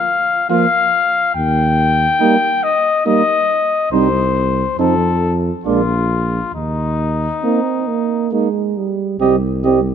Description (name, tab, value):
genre	classical, brass quintet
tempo	69 BPM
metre	3/4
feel	straight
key	Eb major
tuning	A4 = 439 Hz
part	mellow trumpet	melody	0.0-9.8 s	Eb4 to G5	-16 LUFS	left 4 dB	none
part	mellow flugelhorn	second line	0.5-9.8 s	D4 to G4	-21 LUFS	right 11 dB	none
part	mellow French horn	accompaniment	0.5-9.8 s	Bb3 to C4	-21 LUFS	left 1 dB	none
part	mellow trombone	accompaniment	0.5-9.8 s	F3 to C4	-22 LUFS	right 8 dB	none
part	mellow bass trombone	bass	1.4-9.9 s	Bb1 to F2	-19 LUFS	right 1 dB	none
room	light reverb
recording	close, detailed microphones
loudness	-14 LUFS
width	side -8 dB against mid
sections	0.0-9.2 A section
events	none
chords	0.0 Bb5; 1.4 Eb; 3.9 C5; 4.8 F; 5.7 Bb7(no3); 6.5 Eb; 9.2 Cm